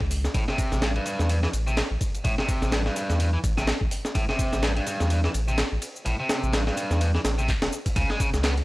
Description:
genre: breakbeat, breaks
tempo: 126 BPM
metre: 4/4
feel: swing 57% on 16ths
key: unclear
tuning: A4 = 440 Hz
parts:
  - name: saturated sub bass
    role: bass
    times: 0.0-8.6 s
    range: E1 to E2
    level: -25 LUFS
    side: equal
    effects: none
  - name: breakbeat sampler-style drum kit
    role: drums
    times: 0.0-8.6 s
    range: hi-hat, kick drum, ride cymbal, snare drum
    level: -27 LUFS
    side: equal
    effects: none
  - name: electronic shaker and handclaps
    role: drums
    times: 0.1-8.5 s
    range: none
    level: -36 LUFS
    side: left 1 dB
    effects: none
  - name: biting overdriven guitar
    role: riff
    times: 0.3-8.5 s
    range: G2 to B3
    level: -29 LUFS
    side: equal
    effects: tape echo
room: little or no reverb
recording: dry, gritty hardware recording, cassette tape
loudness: -22 LUFS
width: side -20 dB against mid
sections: 0.0-8.0 A section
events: none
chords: 0.3 Am7; 8.0 C#7(no3)

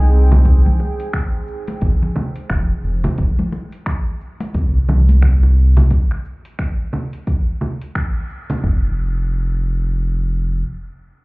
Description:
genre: organic downtempo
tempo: 88 BPM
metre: 4/4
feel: swing 59% on 16ths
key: unclear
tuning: A4 = 438 Hz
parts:
  - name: mellow duduk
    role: melody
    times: 0.0-0.8 s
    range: C4 to Ab4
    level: -33 LUFS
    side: left 1 dB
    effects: ping-pong delay
  - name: warm analog pad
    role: sustained chords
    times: 0.0-3.2 s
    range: Ab4 to G5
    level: -31 LUFS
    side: right 3 dB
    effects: chorus, vintage 12-bit sampler grit, sidechain pumping
  - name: round analog bass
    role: bass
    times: 0.0-10.6 s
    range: F1 to C2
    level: -14 LUFS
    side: equal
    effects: sidechain pumping
  - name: afro-pop drum kit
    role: drums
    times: 0.1-8.6 s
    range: congas, finger snaps, hi-hat, shaker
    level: -24 LUFS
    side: right 1 dB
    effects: none
  - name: congas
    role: percussion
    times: 0.3-5.9 s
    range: none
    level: -26 LUFS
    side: left 1 dB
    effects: none
  - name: organic electronic drum kit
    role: drums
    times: 0.5-8.8 s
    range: kick drum, toms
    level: -18 LUFS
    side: equal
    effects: overdrive
room: little or no reverb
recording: heard muffled through a wall, club reverb, EQ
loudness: -15 LUFS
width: side -26 dB against mid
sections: 0.0-8.6 A section; 8.6-11.2 B section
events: band accent 8.0-8.3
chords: 0.0 Abmaj7; 3.2 N.C.

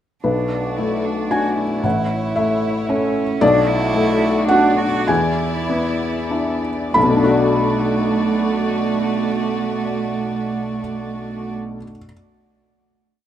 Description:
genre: neoclassical piano and strings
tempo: 92-114 BPM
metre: 3/4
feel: rubato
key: B dorian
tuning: A4 = 440 Hz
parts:
  - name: warm cello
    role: second line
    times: 0.2-11.5 s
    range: A3 to F#4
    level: -24 LUFS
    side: right 6 dB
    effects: none
  - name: felt-muted upright piano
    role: accompaniment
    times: 0.2-12.1 s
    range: A1 to B5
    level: -18 LUFS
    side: left 2 dB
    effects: none
  - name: warm chamber string section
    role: sustained chords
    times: 0.2-11.5 s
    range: A3 to D5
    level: -26 LUFS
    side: right 1 dB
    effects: none
room: light reverb, small room ambience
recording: rough home demo mix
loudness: -16 LUFS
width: side -10 dB against mid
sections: 0.2-7.0 theme; 7.0-10.8 final chord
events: slowing down 2.6-7.0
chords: 0.2 Bm7; 1.8 A; 3.4 Bm7; 5.1 E7; 7.0 Bm7

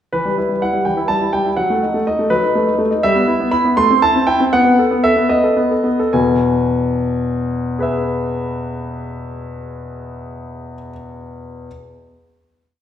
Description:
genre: classical-period piano sonatina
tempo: 71-84 BPM (dotted quarters)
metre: 6/8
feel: rubato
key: unclear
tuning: A4 = 440 Hz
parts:
  - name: clear concert grand piano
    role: solo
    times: 0.1-11.7 s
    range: E2 to C6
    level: -15 LUFS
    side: equal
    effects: none
room: wet recital hall reverb, RT60 1.4 s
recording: heard from further back in the room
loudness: -14 LUFS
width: side -10 dB against mid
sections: 0.1-6.1 A section; 6.1-9.4 final chord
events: slowing down 2.3-6.1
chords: 0.1 Em; 1.6 B7/F#; 3.0 Em/G; 3.8 Am; 4.5 B7; 6.1 E

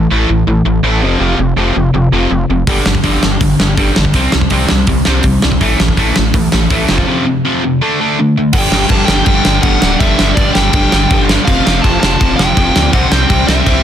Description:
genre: punk rock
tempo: 164 BPM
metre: 4/4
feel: straight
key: unclear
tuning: A4 = 441 Hz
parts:
  - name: cranked stack guitar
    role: riff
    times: 0.0-13.8 s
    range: F2 to D4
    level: -13 LUFS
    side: equal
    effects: overdrive
  - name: gritty driven synth bass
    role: bass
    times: 0.0-13.8 s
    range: D1 to D2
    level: -16 LUFS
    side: equal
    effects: none
  - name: big rock drum kit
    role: drums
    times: 2.7-13.8 s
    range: crash cymbal, hi-hat, kick drum, snare drum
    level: -13 LUFS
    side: equal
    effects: none
  - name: dark smooth lead guitar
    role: melody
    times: 8.5-13.8 s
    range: D5 to A5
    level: -17 LUFS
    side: equal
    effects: overdrive
room: little or no reverb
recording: dense, heavily limited modern master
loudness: -9 LUFS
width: side -10 dB against mid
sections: 0.0-8.5 A section; 8.5-13.8 B section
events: none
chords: 0.0 A5; 1.0 F5; 2.7 G5; 4.1 C5; 5.6 A5; 6.9 F5; 7.8 D5; 8.5 G5; 11.5 F; 12.9 C

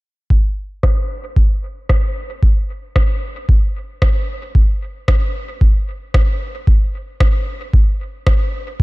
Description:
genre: techno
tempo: 113 BPM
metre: 4/4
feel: straight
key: none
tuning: none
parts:
  - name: electronic kick drum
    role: drums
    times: 0.3-8.8 s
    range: none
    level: -13 LUFS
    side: equal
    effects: overdrive
  - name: electronic rim click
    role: drums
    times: 0.8-8.4 s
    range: none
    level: -26 LUFS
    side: equal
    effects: overdrive, low-pass filter on snare, low-pass filter on room, dub echo
room: little or no reverb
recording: none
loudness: -15 LUFS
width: side -22 dB against mid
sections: 0.3-8.8 A section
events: filter sweep on drum 0.3-8.8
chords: none

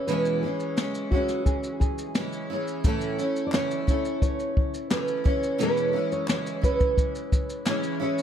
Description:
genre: acoustic pop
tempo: 87 BPM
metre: 4/4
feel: straight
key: E major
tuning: A4 = 440 Hz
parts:
  - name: nylon-string guitar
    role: melody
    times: 0.0-8.0 s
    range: F#4 to D5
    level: -30 LUFS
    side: right 3 dB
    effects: dub echo
  - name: picked steel-string acoustic guitar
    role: accompaniment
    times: 0.0-8.2 s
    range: E2 to E4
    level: -28 LUFS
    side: equal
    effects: double-tracked left and right
  - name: jazz brush drum kit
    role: drums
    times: 0.1-8.2 s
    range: kick drum, shaker, snare drum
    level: -25 LUFS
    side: equal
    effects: none
  - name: group handclap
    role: percussion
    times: 3.5-7.8 s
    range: none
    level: -42 LUFS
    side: left 3 dB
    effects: none
room: little or no reverb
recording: echo-heavy mix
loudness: -24 LUFS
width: side -9 dB against mid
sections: 0.0-8.2 A section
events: none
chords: 0.0 E6; 2.8 A; 5.3 E6

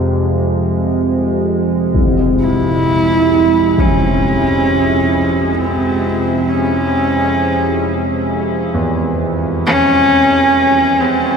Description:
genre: dark ambient drone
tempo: free time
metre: none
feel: none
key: unclear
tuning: A4 = 435 Hz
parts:
  - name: deep dark ambient pad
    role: sustained chords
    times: 0.0-11.4 s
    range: Ab3 to F5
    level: -22 LUFS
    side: equal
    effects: chorus, built-in reverb
  - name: analog drone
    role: drone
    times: 0.0-11.4 s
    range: F2 to C3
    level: -17 LUFS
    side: equal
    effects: chorus
  - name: quartz singing bowl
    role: texture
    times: 0.0-11.4 s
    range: Ab3 to Fb4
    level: -28 LUFS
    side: right 4 dB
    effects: none
  - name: impact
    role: percussion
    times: 1.9-4.0 s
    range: none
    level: -21 LUFS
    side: left 1 dB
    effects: low-pass filter on sfx
  - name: clear horsehead fiddle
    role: melody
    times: 2.4-11.4 s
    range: C4 to Fb4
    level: -14 LUFS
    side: right 1 dB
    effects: ping-pong delay
  - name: warm concert grand piano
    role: arpeggios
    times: 8.7-11.4 s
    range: Fb2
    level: -21 LUFS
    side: right 2 dB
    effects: ping-pong delay
room: wet cathedral reverb, RT60 6.1 s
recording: none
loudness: -12 LUFS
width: side -6 dB against mid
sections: 0.0-11.4 A section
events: fade-in on impacts and reversed cymbals 0.0-11.4; fade-out on ambient pad 0.0-11.4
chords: 0.0 Fmadd9; 1.9 Dbm

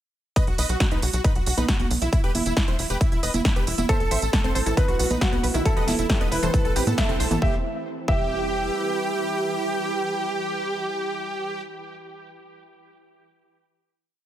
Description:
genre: uplifting trance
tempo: 136 BPM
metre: 4/4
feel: straight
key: E harmonic minor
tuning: A4 = 440 Hz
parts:
  - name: dense compressed supersaw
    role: melody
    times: 0.4-11.6 s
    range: C4 to E5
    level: -28 LUFS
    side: right 1 dB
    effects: sidechain pumping, tape echo
  - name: big-room dance drum kit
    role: drums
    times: 0.4-7.4 s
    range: congas, hi-hat, snare drum, tambourine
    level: -26 LUFS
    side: right 2 dB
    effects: overdrive, sidechain pumping on hats, sidechain pumping on perc
  - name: electronic kick drum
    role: drums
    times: 0.4-8.2 s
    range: none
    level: -22 LUFS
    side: equal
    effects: none
  - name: tight sequencer bass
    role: bass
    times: 0.5-8.7 s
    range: E1 to A2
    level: -28 LUFS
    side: equal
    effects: sidechain pumping
  - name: warm baby grand piano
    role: second line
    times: 3.9-11.6 s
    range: F#4 to E5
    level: -30 LUFS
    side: right 1 dB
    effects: tape echo
  - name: shimmering ambient pad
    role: sustained chords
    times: 4.5-11.0 s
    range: E3 to B4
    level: -34 LUFS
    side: right 3 dB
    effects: chorus, built-in reverb, sidechain pumping
  - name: wide unison pluck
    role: arpeggios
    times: 3.9-8.2 s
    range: D#3 to C5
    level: -31 LUFS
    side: left 1 dB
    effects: cassette tape, sidechain pumping, tape echo
room: light reverb, digital ambience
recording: none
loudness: -21 LUFS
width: side -12 dB against mid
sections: 0.4-7.4 drop; 7.4-10.9 final chord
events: drop 0.4-7.4; band accent 7.0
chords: 0.4 B; 2.1 Em; 3.9 Am; 4.8 B; 5.7 Em; 6.5 Am; 7.4 Em

